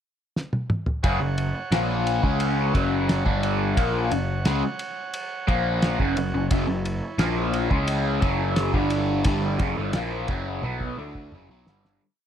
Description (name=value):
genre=psychedelic rock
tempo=88 BPM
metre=4/4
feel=straight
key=F# phrygian dominant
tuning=A4 = 440 Hz
part: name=cloth-damped thuddy drum kit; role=drums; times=0.4-12.0 s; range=kick drum, ride cymbal, snare drum, toms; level=-27 LUFS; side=equal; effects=none
part: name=overdriven combo organ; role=sustained chords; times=1.0-12.0 s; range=E4 to F#5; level=-35 LUFS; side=right 5 dB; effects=none
part: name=raw garage guitar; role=riff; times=1.0-12.0 s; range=F#2 to D4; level=-25 LUFS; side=left 1 dB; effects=overdrive, phaser
part: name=fuzz picked electric bass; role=bass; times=1.0-12.0 s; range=F#1 to D2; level=-27 LUFS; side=equal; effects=overdrive
room=small room ambience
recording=none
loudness=-22 LUFS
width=side -9 dB against mid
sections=0.0-1.0 pickup bar; 1.0-12.0 riff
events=drum fill 0.4-1.0, 10.6-12.0; fade-out 9.3-12.0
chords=0.0 N.C.; 1.0 F#